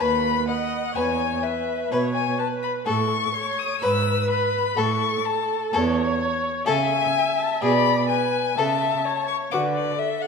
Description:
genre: quick classical-period movement for string quartet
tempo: 126 BPM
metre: 4/4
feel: straight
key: E major, A major from 6.7 s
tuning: A4 = 439 Hz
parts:
  - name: rich violin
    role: melody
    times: 0.0-10.3 s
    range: D5 to E6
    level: -24 LUFS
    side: left 9 dB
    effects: none
  - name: rich violin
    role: second line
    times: 0.0-9.7 s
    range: F#4 to B4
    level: -27 LUFS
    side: left 4 dB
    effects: none
  - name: rich viola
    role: accompaniment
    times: 0.0-10.3 s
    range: A4 to E5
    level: -26 LUFS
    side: right 2 dB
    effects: none
  - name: rich cello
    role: bass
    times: 0.0-9.9 s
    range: D#2 to D3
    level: -27 LUFS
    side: right 4 dB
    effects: none
room: moderate scoring stage reverb, RT60 1.8 s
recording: none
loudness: -20 LUFS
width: side -5 dB against mid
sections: 0.0-10.3 A section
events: none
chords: 0.0 B/D#; 1.0 E; 2.9 A; 3.8 E/G#; 4.8 A; 6.7 A/C#; 7.6 G#dim/B; 8.6 A/C#; 9.5 D

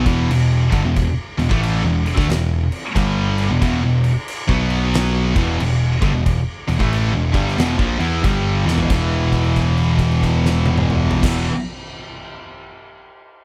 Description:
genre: stoner and doom metal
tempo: 91 BPM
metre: 4/4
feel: swing 63% on 8ths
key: E minor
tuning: A4 = 440 Hz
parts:
  - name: heavy high-gain guitar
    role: riff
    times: 0.0-11.5 s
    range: E2 to E4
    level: -27 LUFS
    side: equal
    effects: distortion
  - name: thick fuzz guitar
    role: riff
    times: 0.0-11.5 s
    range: E2 to E4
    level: -25 LUFS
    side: equal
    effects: distortion
  - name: thick fuzz guitar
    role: riff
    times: 0.0-11.5 s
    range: E2 to E4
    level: -23 LUFS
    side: equal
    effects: distortion
  - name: overdriven picked electric bass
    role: bass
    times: 0.1-11.5 s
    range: E1 to E2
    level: -24 LUFS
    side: equal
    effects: none
  - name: oversized low-tuned drum kit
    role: drums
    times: 0.1-11.4 s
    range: crash cymbal, kick drum, snare drum, toms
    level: -25 LUFS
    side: equal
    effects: none
room: little or no reverb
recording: none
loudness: -18 LUFS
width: mono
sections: 0.0-8.9 A section; 8.9-11.6 B section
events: drum fill 8.6-8.9; held note 8.9-11.2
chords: 0.0 Em; 4.4 B5; 5.3 Em; 8.9 E5

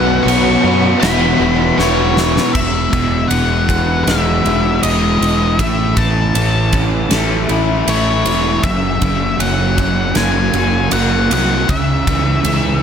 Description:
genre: rock, shoegaze and dream pop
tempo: 79 BPM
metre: 4/4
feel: straight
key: E major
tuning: A4 = 441 Hz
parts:
  - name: octave-fuzz lead guitar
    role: melody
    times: 0.0-12.8 s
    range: C#5 to C#6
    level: -20 LUFS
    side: left 4 dB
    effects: distortion, analog delay
  - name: warbly tape-like pad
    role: sustained chords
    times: 0.0-2.5 s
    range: F#4 to B5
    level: -24 LUFS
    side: equal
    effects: chorus, built-in reverb, phaser
  - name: biting overdriven guitar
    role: riff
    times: 0.0-2.5 s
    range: E2 to B3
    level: -22 LUFS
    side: equal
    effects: none
  - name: crunchy overdriven guitar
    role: riff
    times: 0.0-12.8 s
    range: E2 to F#4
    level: -19 LUFS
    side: left 8 dB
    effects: wide subtle chorus
  - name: crunchy overdriven guitar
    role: riff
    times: 0.0-12.8 s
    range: E2 to F#4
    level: -19 LUFS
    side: right 10 dB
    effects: reverse reverb
  - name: fuzz fingered electric bass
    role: bass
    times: 0.0-12.8 s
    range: E1 to F#2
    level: -18 LUFS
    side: equal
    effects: overdrive
  - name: huge arena drum kit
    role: drums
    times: 0.3-12.6 s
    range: crash cymbal, kick drum, ride cymbal, snare drum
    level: -19 LUFS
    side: equal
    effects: none
room: light reverb, studio ambience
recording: none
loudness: -12 LUFS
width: side -8 dB against mid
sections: 0.0-2.5 A section; 2.5-12.8 B section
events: drum fill 1.8-2.5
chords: 0.0 Bsus2; 1.0 Esus2; 2.5 E; 5.6 A; 8.6 F#; 11.7 C#m

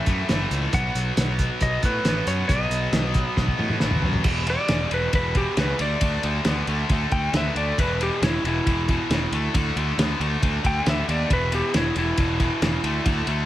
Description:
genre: classic rock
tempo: 136 BPM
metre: 4/4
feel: straight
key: unclear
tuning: A4 = 441 Hz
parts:
  - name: clean lap steel guitar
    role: melody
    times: 0.0-13.2 s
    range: E4 to G5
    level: -28 LUFS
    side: equal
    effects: tape echo
  - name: tight distorted guitar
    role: riff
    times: 0.0-13.5 s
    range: E2 to B3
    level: -26 LUFS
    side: left 1 dB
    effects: distortion
  - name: fuzz picked electric bass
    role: bass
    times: 0.1-13.4 s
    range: E1 to A2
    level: -26 LUFS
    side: equal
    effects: overdrive
  - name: cloth-damped thuddy drum kit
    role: drums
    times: 0.1-13.4 s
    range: crash cymbal, hi-hat, kick drum, ride cymbal, snare drum, toms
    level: -25 LUFS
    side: equal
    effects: none
room: light reverb, small room ambience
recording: none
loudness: -20 LUFS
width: side -13 dB against mid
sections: 0.0-4.2 A section; 4.2-13.5 B section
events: drum fill 3.4-4.2; electric slide guitar solo 4.2-13.5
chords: 0.0 A; 0.7 B; 4.2 E5; 5.8 D5; 7.8 E5; 9.3 Dsus2; 11.3 E5; 12.8 Dsus2

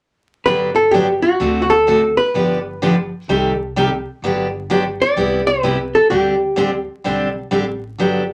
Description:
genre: country, western swing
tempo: 128 BPM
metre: 4/4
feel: swing 67% on 8ths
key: G major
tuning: A4 = 440 Hz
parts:
  - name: archtop guitar, miked and amplified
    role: melody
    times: 0.5-6.8 s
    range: F#4 to D5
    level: -17 LUFS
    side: equal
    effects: none
  - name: picked steel-string acoustic guitar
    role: accompaniment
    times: 0.5-8.2 s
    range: C3 to A4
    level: -20 LUFS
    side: equal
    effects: none
  - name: upright bass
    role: bass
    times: 0.5-8.3 s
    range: G1 to D2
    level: -34 LUFS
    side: equal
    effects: none
room: wet club reverb, RT60 0.5 s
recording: vinyl crackle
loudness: -17 LUFS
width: mono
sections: 0.5-8.0 A section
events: none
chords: 0.5 Gmaj7; 1.4 D7; 2.3 G7; 3.3 Cm6; 4.2 Gmaj7; 5.2 Cmaj7; 6.1 D7sus4

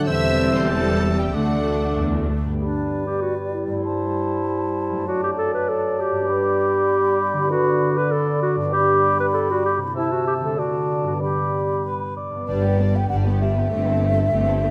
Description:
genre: cinematic, playful, whimsical film cue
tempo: 97 BPM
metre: 2/4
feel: straight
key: G major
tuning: A4 = 440 Hz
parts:
  - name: mellow clarinet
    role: second line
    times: 0.0-11.8 s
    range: D4 to C5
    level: -25 LUFS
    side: equal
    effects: none
  - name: mellow bassoon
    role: accompaniment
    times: 0.0-12.2 s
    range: C3 to A3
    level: -30 LUFS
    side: equal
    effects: none
  - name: mellow French horn section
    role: sustained chords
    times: 0.0-2.3 s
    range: G3 to D4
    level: -29 LUFS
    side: equal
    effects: none
  - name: concert harp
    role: arpeggios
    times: 0.0-14.7 s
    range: F#2 to D5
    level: -30 LUFS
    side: equal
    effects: none
  - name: rich studio violin section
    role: melody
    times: 0.1-2.0, 12.5-14.7 s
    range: G4 to E6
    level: -36 LUFS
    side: equal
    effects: none
  - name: mellow cor anglais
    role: second line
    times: 0.1-12.5 s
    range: B4 to E5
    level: -32 LUFS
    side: equal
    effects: none
  - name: warm studio violin section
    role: second line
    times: 0.1-2.0, 12.5-14.7 s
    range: A3 to E5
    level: -34 LUFS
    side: equal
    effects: none
  - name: warm studio viola section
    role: accompaniment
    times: 0.1-2.4, 12.5-14.7 s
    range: G3 to D4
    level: -30 LUFS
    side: equal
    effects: none
  - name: warm studio cello section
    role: bass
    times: 0.1-2.6, 12.5-14.7 s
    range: D2 to G2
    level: -27 LUFS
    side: equal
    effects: none
  - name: warm studio double bass section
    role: bass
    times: 0.1-2.4, 12.5-14.7 s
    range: E1 to D2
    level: -29 LUFS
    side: equal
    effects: none
  - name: mellow hollow silver concert flute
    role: second line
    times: 2.6-14.7 s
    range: D5 to B5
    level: -30 LUFS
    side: equal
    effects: none
  - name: mellow tuba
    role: bass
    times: 12.5-14.7 s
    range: G1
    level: -29 LUFS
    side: equal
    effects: none
room: moderate scoring stage reverb, RT60 1.6 s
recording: none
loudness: -21 LUFS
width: mono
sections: 0.0-2.6 A section; 2.6-12.5 B section; 12.5-14.7 B section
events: none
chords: 0.1 C/E; 1.3 D; 2.6 G; 3.8 Am7/G; 5.1 D7/F#; 6.3 G; 10.0 Am/C; 10.6 D; 11.2 G; 13.7 Am7/G

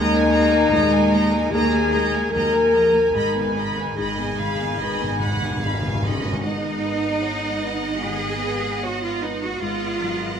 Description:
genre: cinematic, emotional film score for orchestra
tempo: 74 BPM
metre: 4/4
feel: rubato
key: G# dorian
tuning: A4 = 435 Hz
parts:
  - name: clear studio violin section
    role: melody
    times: 0.0-10.4 s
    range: F#5 to B5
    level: -31 LUFS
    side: left 3 dB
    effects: none
  - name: clear symphonic violin section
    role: second line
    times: 0.0-10.4 s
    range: A#4 to F#5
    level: -31 LUFS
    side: right 2 dB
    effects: none
  - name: large flute ensemble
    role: second line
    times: 0.0-6.0 s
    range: A#5 to B5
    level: -31 LUFS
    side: left 3 dB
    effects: none
  - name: warm cor anglais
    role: second line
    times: 0.0-6.1 s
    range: G#5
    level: -30 LUFS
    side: right 5 dB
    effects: none
  - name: felt-muted upright piano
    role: accompaniment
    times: 0.0-10.4 s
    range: D#2 to C#5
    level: -31 LUFS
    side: left 2 dB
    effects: none
  - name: rich symphonic viola section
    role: accompaniment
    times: 0.0-10.4 s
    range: G#3 to B3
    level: -32 LUFS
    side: right 2 dB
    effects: none
  - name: mellow French horn section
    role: sustained chords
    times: 0.0-6.0 s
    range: D#4 to A#4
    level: -20 LUFS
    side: left 3 dB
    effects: none
  - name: rich symphonic cello section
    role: bass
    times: 0.0-10.4 s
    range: D#3 to G#4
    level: -26 LUFS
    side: right 3 dB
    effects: none
  - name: rich symphonic double bass section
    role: bass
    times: 0.0-10.4 s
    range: G#1 to D#2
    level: -28 LUFS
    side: right 3 dB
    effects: none
  - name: timpani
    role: percussion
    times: 3.2-6.4 s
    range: G#2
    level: -28 LUFS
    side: equal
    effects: none
room: wet scoring stage reverb, RT60 1.8 s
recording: none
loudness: -19 LUFS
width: side -8 dB against mid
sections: 0.0-6.4 A section; 6.4-10.4 A section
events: timpani fill 3.1-6.4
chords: 0.0 D#sus4; 3.1 G#m7

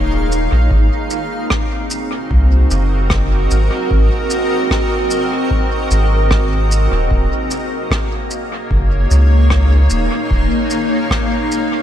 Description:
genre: ambient dub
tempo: 75 BPM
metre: 4/4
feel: straight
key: unclear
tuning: A4 = 440 Hz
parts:
  - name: granular cloud pad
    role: sustained chords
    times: 0.0-11.8 s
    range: Bb3 to F5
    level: -18 LUFS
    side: equal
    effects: built-in reverb
  - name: soft dub sub bass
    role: bass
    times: 0.0-10.5 s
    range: Eb1 to Db2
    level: -13 LUFS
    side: equal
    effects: none
  - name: shaker and rim click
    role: drums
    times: 0.3-11.7 s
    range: none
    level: -23 LUFS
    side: equal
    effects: dub echo
  - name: electronic kick drum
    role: drums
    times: 0.7-11.3 s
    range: none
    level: -20 LUFS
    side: equal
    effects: none
room: light reverb, studio ambience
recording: none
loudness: -13 LUFS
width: side -10 dB against mid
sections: 0.0-11.8 A section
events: none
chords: 0.0 Eb7(no3); 0.7 Ab7; 7.1 Ebm7

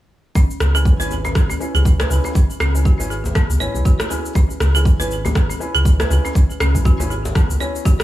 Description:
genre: afro house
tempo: 120 BPM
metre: 4/4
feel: swing 58% on 16ths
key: C# minor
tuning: A4 = 442 Hz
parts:
  - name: folk marimba with hard mallets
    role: arpeggios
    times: 0.4-8.0 s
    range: B3 to C#5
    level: -25 LUFS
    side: right 2 dB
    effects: sidechain pumping, digital delay
  - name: round analog bass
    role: bass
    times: 0.4-7.6 s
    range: G#1 to C#2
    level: -18 LUFS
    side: equal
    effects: tube saturation, sidechain pumping
  - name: electronic kick drum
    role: drums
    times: 0.4-8.0 s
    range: none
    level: -15 LUFS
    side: equal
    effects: overdrive
  - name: electronic shaker and rim click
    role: drums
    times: 0.4-8.0 s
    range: none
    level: -26 LUFS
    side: equal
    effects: overdrive
  - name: djembe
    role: percussion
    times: 0.6-8.0 s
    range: none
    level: -28 LUFS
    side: left 2 dB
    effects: none
  - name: felt-muted upright piano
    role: stabs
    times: 0.7-8.0 s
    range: C#4 to B4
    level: -29 LUFS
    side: left 2 dB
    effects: sidechain pumping, digital delay
room: small room reverb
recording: small room ambience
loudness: -15 LUFS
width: side -14 dB against mid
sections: 0.4-8.0 A section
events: none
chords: 0.4 C#m7

